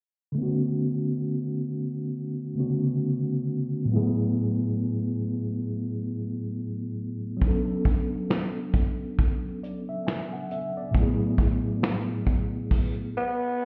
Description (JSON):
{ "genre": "lo-fi hip hop", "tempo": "68 BPM", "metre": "4/4", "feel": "swing 57% on 16ths", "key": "B dorian", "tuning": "A4 = 440 Hz", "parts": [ { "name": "mellow tine electric piano", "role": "accompaniment", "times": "0.3-13.1 s", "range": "A2 to G#5", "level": "-29 LUFS", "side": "equal", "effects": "low-pass filter" }, { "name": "vintage brush drum kit", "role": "drums", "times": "7.4-12.9 s", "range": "crash cymbal, finger snaps, hi-hat, kick drum, snare drum", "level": "-28 LUFS", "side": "equal", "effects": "none" }, { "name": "growling tenor saxophone", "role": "melody", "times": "13.2-13.7 s", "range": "B3", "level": "-28 LUFS", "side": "equal", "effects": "low-pass filter" } ], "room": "light reverb", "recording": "heard muffled through a wall, stone room reverb, EQ", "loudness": "-27 LUFS", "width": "mono", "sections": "0.4-13.7 A section", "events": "filter sweep on tine electric piano 0.4-13.7; tine electric piano fill 12.7-13.7", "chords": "0.4 Bm9; 3.9 F#m11/A; 7.4 Bm9; 10.9 F#m11/A" }